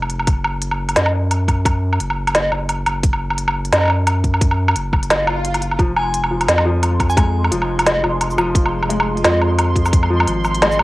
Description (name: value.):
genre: half-time drum and bass.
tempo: 174 BPM.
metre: 4/4.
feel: swing 57% on 16ths, half-time.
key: F phrygian.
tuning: A4 = 440 Hz.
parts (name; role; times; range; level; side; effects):
saturated sub bass; bass; 0.0-10.8 s; F1 to Gb2; -20 LUFS; equal; none.
organic electronic drum kit; drums; 0.0-10.8 s; hi-hat, shaker, snare drum, woodblock; -18 LUFS; equal; overdrive, cassette tape.
electronic kick drum; drums; 0.3-10.0 s; none; -16 LUFS; equal; cassette tape.
swell; sound effects; 5.2-5.8 s; none; -25 LUFS; left 1 dB; none.
deep dark ambient pad; sustained chords; 6.7-10.8 s; Ab3 to Eb5; -30 LUFS; right 1 dB; chorus, built-in reverb, sidechain pumping.
felt-muted upright piano; arpeggios; 5.8-10.8 s; F3 to Ab3; -22 LUFS; left 2 dB; tape echo.
pulsing gated texture; texture; 5.8-10.8 s; C6; -28 LUFS; right 3 dB; chorus, built-in reverb.
glassy synth bell; melody; 6.0-7.2 s; Ab5; -25 LUFS; left 1 dB; chorus, analog delay.
room: light reverb.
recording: home recording on cassette.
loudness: -15 LUFS.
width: side -19 dB against mid.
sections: 0.0-10.8 A section.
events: swell 5.2-5.8.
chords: 0.3 N.C.; 5.8 Fm7.